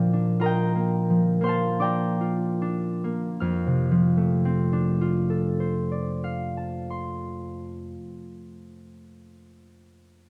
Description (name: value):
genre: classical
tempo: 35-49 BPM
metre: 3/4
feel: rubato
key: F mixolydian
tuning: A4 = 440 Hz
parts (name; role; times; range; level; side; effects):
- concert harp; accompaniment; 0.0-9.2 s; F2 to F6; -25 LUFS; equal; none
room: wet recital hall reverb, RT60 1.7 s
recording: dark, warm production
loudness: -25 LUFS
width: mono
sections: 0.0-3.5 A section; 3.5-7.8 B section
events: slowing down 0.0-3.5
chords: 0.0 Bbadd9; 3.5 F6